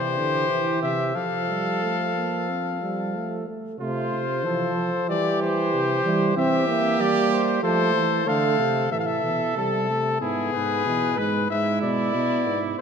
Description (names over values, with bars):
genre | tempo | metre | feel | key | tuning
classical, imitative canzona for brass ensemble | 93 BPM | 4/4 | straight | F major | A4 = 441 Hz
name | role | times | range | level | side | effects
clear cornet | melody | 0.0-12.8 s | G#4 to F5 | -26 LUFS | left 7 dB | none
clear trumpet | second line | 0.0-12.8 s | E4 to B4 | -28 LUFS | right 7 dB | none
mellow euphonium | accompaniment | 0.0-12.8 s | E3 to C4 | -27 LUFS | right 2 dB | none
mellow bass trombone | bass | 0.0-12.8 s | G#2 to G3 | -28 LUFS | right 2 dB | none
room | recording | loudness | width
wet concert hall reverb, RT60 2.1 s | none | -21 LUFS | side -6 dB against mid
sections
0.0-3.8 A section; 3.8-8.9 B section; 8.9-12.8 C section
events
none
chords
0.0 C; 1.2 F; 3.8 F/C; 5.1 C; 7.6 F; 8.9 Am; 10.2 E/G#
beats
0.49 | 1.15 1.82 2.48 3.15 | 3.80 4.45 5.09 5.73 | 6.37 7.00 7.63 8.27 | 8.91 9.56 10.21 10.86 | 11.50 12.14 12.79